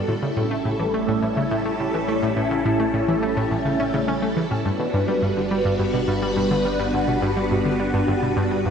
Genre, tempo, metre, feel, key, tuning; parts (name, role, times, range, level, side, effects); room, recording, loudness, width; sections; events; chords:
ambient, sequencer-driven space music; 105 BPM; 4/4; straight; G lydian; A4 = 440 Hz
phased string machine; sustained chords; 0.0-8.7 s; G3 to B4; -22 LUFS; equal; ensemble chorus, phaser, shimmer reverb
analog pluck; riff; 0.0-8.7 s; G2 to C#4; -24 LUFS; equal; chorus, tape echo
wet lush hall reverb, RT60 2.7 s; dreamy mix soaked in reverb, cassette tape; -20 LUFS; side -7 dB against mid
0.0-8.7 A section
0.1 A7; 4.7 Gmaj7